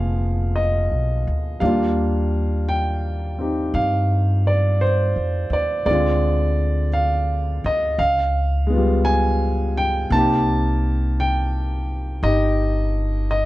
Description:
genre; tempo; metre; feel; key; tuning
jazz ballad; 56 BPM; 4/4; swing 68% on 8ths; unclear; A4 = 440 Hz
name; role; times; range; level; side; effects
warm concert grand piano; accompaniment; 0.0-13.5 s; D3 to A5; -21 LUFS; equal; none
upright bass; bass; 0.0-13.5 s; F1 to G2; -21 LUFS; equal; none
room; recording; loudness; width
light reverb; dark, warm production, nothing above 10.6 kHz; -18 LUFS; side -17 dB against mid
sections
0.0-13.5 A section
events
none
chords
0.0 Bb7b9; 1.6 Ebmaj9; 5.9 Dm7b5; 8.0 Db7#11; 10.1 Cm7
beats
0.54 | 1.60 2.67 3.73 4.79 | 5.86 6.92 7.98 9.04 | 10.11 11.17 12.23 13.30

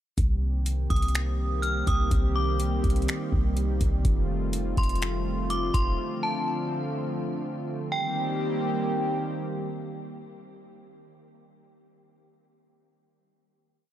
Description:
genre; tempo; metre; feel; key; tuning
hip hop, atmospheric cloud-rap; 124 BPM; 4/4; half-time; C dorian; A4 = 440 Hz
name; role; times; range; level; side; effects
warm analog pad; sustained chords; 0.2-10.9 s; D3 to G4; -30 LUFS; equal; chorus, sidechain pumping
clean 808-style bass; bass; 0.2-6.0 s; F1 to C2; -27 LUFS; equal; none
booming analog drum machine; drums; 0.2-5.9 s; finger snaps, hi-hat, kick drum; -26 LUFS; equal; none
metallic FM bell; melody; 0.9-9.3 s; G5 to F6; -32 LUFS; equal; chorus, low-pass filter, tape echo
room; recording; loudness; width
light reverb; none; -24 LUFS; side -12 dB against mid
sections
0.2-7.9 verse; 7.9-11.8 final chord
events
none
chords
0.2 Cm7; 4.0 F9; 6.0 Dm7; 7.9 Cm7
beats
| 0.18 0.66 1.15 1.63 | 2.11 2.60 3.08 3.56 | 4.05 4.53 5.02 5.50 | 5.98 6.47 6.95 7.44 | 7.92 8.40 8.89 9.37 | 9.86 10.34 10.82

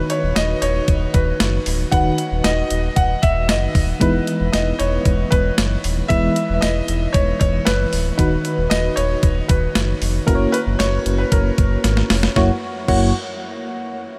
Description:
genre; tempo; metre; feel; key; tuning
1980s-style pop; 115 BPM; 4/4; straight; F# mixolydian; A4 = 440 Hz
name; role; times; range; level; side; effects
clear concert grand piano; melody; 0.0-13.1 s; F#4 to F#5; -25 LUFS; equal; delay
FM electric piano with tremolo; accompaniment; 0.0-13.1 s; F#2 to C#5; -25 LUFS; equal; none
sub bass with octave; bass; 0.0-13.1 s; D1 to G#1; -23 LUFS; equal; none
clean 12-bit digital drum machine; drums; 0.1-13.0 s; crash cymbal, hi-hat, kick drum, snare drum, tambourine; -23 LUFS; equal; none
room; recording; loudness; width
moderate huge ambient reverb, RT60 8.4 s; dreamy mix soaked in reverb; -18 LUFS; mono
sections
0.0-12.4 A section; 12.4-14.2 B section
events
drum fill 11.8-12.4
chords
0.0 B; 4.0 Emaj7; 8.2 B/D#; 10.3 F#7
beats
0.36 0.88 1.41 | 1.93 2.45 2.97 3.49 | 4.01 4.54 5.06 5.58 | 6.10 6.62 7.14 7.67 | 8.19 8.71 9.23 9.75 | 10.28 10.80 11.32 11.84 | 12.36 12.88

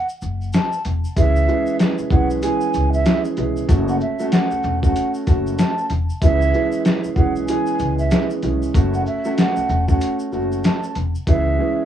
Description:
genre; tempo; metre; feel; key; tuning
hip hop, boom-bap hip-hop; 95 BPM; 4/4; swing 61% on 16ths; C# minor; A4 = 440 Hz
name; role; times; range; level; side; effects
mellow hollow concert flute; melody; 0.0-11.8 s; E5 to A5; -24 LUFS; right 2 dB; high-pass filter, low-pass filter, cassette tape, tape echo
tube shaker; percussion; 0.1-11.3 s; none; -45 LUFS; left 4 dB; none
upright bass; bass; 0.2-11.6 s; E1 to C#2; -21 LUFS; equal; none
dusty soul sampler-style drum kit; drums; 0.2-11.5 s; hi-hat, kick drum, shaker, snare drum; -18 LUFS; equal; overdrive, cassette tape
dark baby grand piano; accompaniment; 1.2-11.8 s; E3 to G#4; -22 LUFS; right 2 dB; cassette tape, high-pass filter, low-pass filter
room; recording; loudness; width
light reverb; home recording on cassette; -16 LUFS; side -10 dB against mid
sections
0.0-11.3 A section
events
break 0.0-1.2, 10.0-11.3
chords
0.0 Esus24; 1.2 C#m7; 3.7 F#m; 6.2 C#m7; 8.7 F#m; 11.3 C#m7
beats
0.54 | 1.17 1.80 2.43 3.06 | 3.69 4.32 4.96 5.59 | 6.22 6.85 7.48 8.11 | 8.74 9.38 10.01 10.64 | 11.27

